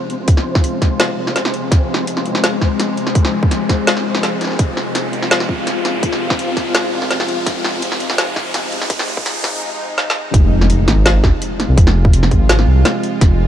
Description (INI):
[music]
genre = half-time drum and bass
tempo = 167 BPM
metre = 4/4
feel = half-time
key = F minor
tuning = A4 = 439 Hz
[part]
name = bowed-like drone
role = sustained chords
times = 0.0-13.5 s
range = C3 to Ab4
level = -21 LUFS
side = left 2 dB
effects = built-in reverb, sidechain pumping
[part]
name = riser and impact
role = sound effects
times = 0.5-11.8 s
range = none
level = -26 LUFS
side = equal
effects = none
[part]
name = flickering grainy texture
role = texture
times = 0.0-9.6 s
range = C4 to C5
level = -27 LUFS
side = left 1 dB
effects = built-in reverb
[part]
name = drum and bass drum kit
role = drums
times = 0.1-13.3 s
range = hi-hat, snare drum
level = -18 LUFS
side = equal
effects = high-pass filter on hats, high-pass filter on snare, high-pass filter on room
[part]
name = dark detuned saw bass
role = bass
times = 0.2-13.5 s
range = Eb1 to C2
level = -18 LUFS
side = equal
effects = high-pass filter
[part]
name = electronic kick drum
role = drums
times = 0.3-13.3 s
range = none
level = -13 LUFS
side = equal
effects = none
[sound]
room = light reverb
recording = dark, warm production, high-pass filter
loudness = -13 LUFS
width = side -10 dB against mid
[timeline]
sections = 0.0-10.3 A section; 10.3-13.5 B section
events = build-up 0.0-10.3; filter sweep 0.0-10.3; riser 0.5-9.6; drum fill 10.0-10.3; drop 10.3-13.5; impact 10.3-11.8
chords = 0.0 Fm